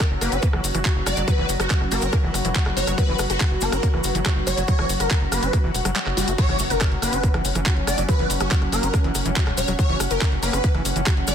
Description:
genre	psychedelic trance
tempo	141 BPM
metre	4/4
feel	straight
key	F# major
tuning	A4 = 442 Hz
part	swarming rave lead	melody	0.0-11.3 s	F#4 to D5	-26 LUFS	equal	chorus, phaser, sidechain pumping, digital delay
part	evolving wavetable pad	sustained chords	0.0-11.3 s	F#3 to F#4	-30 LUFS	right 1 dB	chorus, built-in reverb, sidechain pumping
part	electronic kick drum	drums	0.0-11.2 s	none	-21 LUFS	equal	none
part	garage drum kit	drums	0.0-11.3 s	crash cymbal, handclaps, hi-hat, rim click	-27 LUFS	equal	soft clipping on snare
part	cabasa	percussion	0.0-11.3 s	none	-32 LUFS	left 2 dB	none
part	airy breathy pad	texture	0.0-11.3 s	C#4 to F#5	-31 LUFS	left 2 dB	chorus, phaser, sidechain pumping
part	tight sequencer bass	bass	0.1-11.3 s	E1 to F#1	-26 LUFS	equal	none
part	overdriven acid bass	riff	0.2-11.3 s	E3 to F#4	-30 LUFS	moving between left 5 dB and right 4 dB	distortion, auto-pan, sidechain pumping, digital delay
part	impact	sound effects	6.4-8.1 s	none	-33 LUFS	right 1 dB	none
room	digital ambience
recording	dense, heavily limited modern master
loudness	-19 LUFS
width	side -8 dB against mid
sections	0.0-6.4 A section; 6.4-11.3 B section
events	kick drops out 6.0-6.4; drop 6.4-11.3; impact 6.4-8.1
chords	0.0 F#5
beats	0.00 0.43 0.85 | 1.28 1.70 2.13 2.55 | 2.98 3.40 3.83 4.26 | 4.68 5.11 5.53 5.96 | 6.38 6.81 7.24 7.66 | 8.09 8.51 8.94 9.36 | 9.79 10.21 10.64 11.06

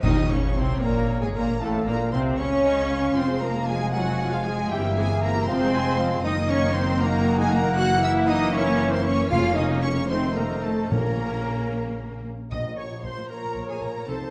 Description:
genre	classical, dramatic, fast romantic movement for symphony orchestra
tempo	77 BPM (dotted quarters)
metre	6/8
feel	straight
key	Bb minor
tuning	A4 = 440 Hz
part	rich symphonic violin section	melody	0.0-14.3 s	F5 to Gb6	-36 LUFS	equal	none
part	clear symphonic violin section	second line	0.0-14.2 s	F4 to Gb5	-38 LUFS	equal	none
part	flute section	second line	0.0-14.3 s	F4 to Gb5	-35 LUFS	equal	none
part	warm clarinet	second line	0.0-14.3 s	Ab4 to Ab5	-34 LUFS	equal	none
part	rich symphonic viola section	accompaniment	0.0-14.3 s	F3 to Db5	-32 LUFS	equal	none
part	bright trombone section	sustained chords	0.0-12.2 s	Ab2 to Bb3	-35 LUFS	equal	none
part	mellow French horn section	sustained chords	0.0-14.3 s	F3 to Gb4	-34 LUFS	equal	none
part	rich studio double bass section	bass	0.0-14.1 s	F1 to Eb2	-30 LUFS	equal	none
part	rich symphonic cello section	bass	0.0-14.3 s	Bb2 to Gb4	-31 LUFS	equal	none
part	clash cymbals and concert bass drum	percussion	0.0-1.0 s	none	-32 LUFS	equal	none
part	timpani	percussion	0.0-0.8, 9.3-13.3 s	F2 to Bb2	-32 LUFS	equal	none
room	wet recital hall reverb, RT60 1.7 s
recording	dark, warm production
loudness	-24 LUFS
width	mono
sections	0.0-12.5 A section; 12.5-14.3 B section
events	band accent 0.0-0.6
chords	0.0 Bbm; 1.6 F/A; 2.4 Dbadd9; 3.2 Fm; 4.7 C7/G; 5.5 Fm; 6.2 Ebm/Gb; 7.8 Gb7; 9.3 Bbm/F; 10.1 F7; 10.9 Bbm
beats	| 0.04 0.83 | 1.61 2.39 | 3.17 3.94 | 4.71 5.48 | 6.25 7.01 | 7.78 8.55 | 9.32 10.11 | 10.91 11.71 | 12.52 13.30 | 14.07

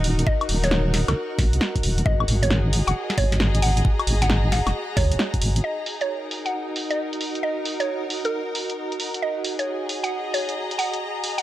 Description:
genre	UK garage, two-step garage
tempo	134 BPM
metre	4/4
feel	swing 65% on 16ths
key	unclear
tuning	A4 = 440 Hz
part	airy breathy pad	sustained chords	0.0-11.4 s	F#4 to F#5	-34 LUFS	right 3 dB	chorus, sidechain pumping
part	deep soft wobble bass	bass	0.0-5.6 s	D#1 to D#2	-20 LUFS	equal	chorus, tube saturation
part	punchy analog drum machine	drums	0.0-11.4 s	hi-hat, snare drum, woodblock	-26 LUFS	equal	low-pass filter on perc, low-pass filter on hats, low-pass filter on snare
part	dark chamber string section	texture	0.0-11.4 s	D#4 to A#5	-30 LUFS	left 2 dB	sidechain pumping
part	mallet-like synth pluck	melody	0.3-11.4 s	A#4 to F#5	-28 LUFS	right 1 dB	chorus, dub echo
part	electronic kick drum	drums	0.3-5.4 s	none	-22 LUFS	equal	overdrive
room	light reverb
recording	none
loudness	-21 LUFS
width	side -14 dB against mid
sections	0.0-5.6 A section; 5.6-11.4 B section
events	none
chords	0.0 D#m; 2.1 G#5; 5.6 D#m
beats	| 0.27 0.71 1.16 1.61 | 2.06 2.50 2.95 3.40 | 3.85 4.30 4.74 5.19 | 5.64 6.09 6.54 6.98 | 7.43 7.88 8.33 8.77 | 9.22 9.67 10.12 10.56 | 11.01

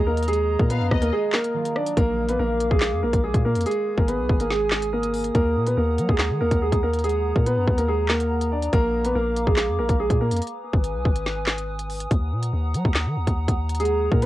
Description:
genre	hip hop, drill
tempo	142 BPM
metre	4/4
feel	half-time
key	Eb harmonic minor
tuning	A4 = 440 Hz
part	warm concert grand piano	melody	0.0-10.4, 13.8-14.3 s	Ab3 to D5	-23 LUFS	right 1 dB	cassette tape
part	concert harp	accompaniment	0.0-2.0 s	Eb3 to Gb4	-37 LUFS	right 8 dB	none
part	warbly tape-like pad	sustained chords	0.0-14.3 s	Ab4 to Eb6	-32 LUFS	equal	chorus, built-in reverb
part	long sustained 808-style bass	bass	0.0-14.3 s	Ab1 to Gb3	-25 LUFS	equal	none
part	drill drum kit	drums	0.2-14.3 s	handclaps, hi-hat, kick drum, rim click, snare drum	-22 LUFS	equal	vintage 12-bit sampler grit, cassette tape
part	warm studio violin section	second line	0.7-1.1 s	Eb5 to F5	-36 LUFS	left 9 dB	tape echo
room	light reverb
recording	home recording on cassette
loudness	-20 LUFS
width	side -15 dB against mid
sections	0.0-2.0 A section; 2.0-14.3 B section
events	break 1.1-2.0, 10.4-13.8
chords	0.0 Ebm; 2.0 Bb; 3.7 Abm; 5.3 Ebm; 8.7 Bb; 10.4 Abm; 12.1 Ebm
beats	| 0.28 0.70 1.12 1.55 | 1.97 2.39 2.81 3.24 | 3.66 4.08 4.50 4.93 | 5.35 5.77 6.20 6.62 | 7.04 7.46 7.88 8.31 | 8.73 9.15 9.57 10.00 | 10.42 10.84 11.27 11.69 | 12.11 12.53 12.96 13.38 | 13.80 14.22

